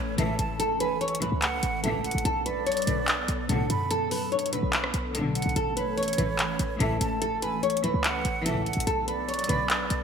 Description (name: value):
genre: hip hop, trap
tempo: 145 BPM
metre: 4/4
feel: half-time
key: A major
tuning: A4 = 442 Hz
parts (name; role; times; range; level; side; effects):
- nylon-string guitar; melody; 0.0-10.0 s; A4 to C#5; -29 LUFS; equal; analog chorus, ping-pong delay
- breathy concert flute; second line; 0.0-10.0 s; C#5 to B5; -34 LUFS; right 5 dB; ping-pong delay
- hollow soft pad; sustained chords; 0.0-10.0 s; E3 to A4; -35 LUFS; left 2 dB; ensemble chorus
- short 808-style bass; bass; 0.0-10.0 s; G#1 to F#2; -32 LUFS; equal; none
- warm studio string section; stabs; 0.2-9.6 s; B1 to E3; -32 LUFS; left 2 dB; none
- trap drum kit; drums; 0.2-10.0 s; handclaps, hi-hat, rim click; -29 LUFS; left 1 dB; gated reverb
room: moderate lush hall reverb, RT60 1.8 s, small room ambience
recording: bright 1980s-style digital production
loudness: -24 LUFS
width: side -7 dB against mid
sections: 0.0-10.0 A section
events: none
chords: 0.0 A; 2.3 Bm7; 5.6 A; 8.9 Bm7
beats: 0.18 | 0.59 1.01 1.42 1.84 | 2.25 2.66 3.08 3.49 | 3.91 4.32 4.73 5.15 | 5.56 5.97 6.39 6.80 | 7.22 7.63 8.04 8.46 | 8.87 9.29 9.70